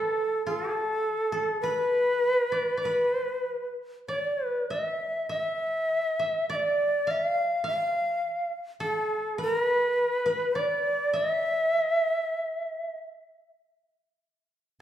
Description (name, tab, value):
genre	japanese traditional, Japanese chamber music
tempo	50 BPM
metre	2/4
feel	uneven beats, rubato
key	E in sen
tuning	A4 = 436 Hz
part	bright shakuhachi	melody	0.0-13.0 s	A4 to F5	-25 LUFS	equal	none
part	koto	second line	0.0-12.9 s	A4 to F5	-35 LUFS	equal	none
room	wet recital hall reverb, RT60 1.5 s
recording	recorded in a church or concert hall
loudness	-25 LUFS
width	side -11 dB against mid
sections	0.0-13.6 A section; 13.6-14.8 B section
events	none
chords	none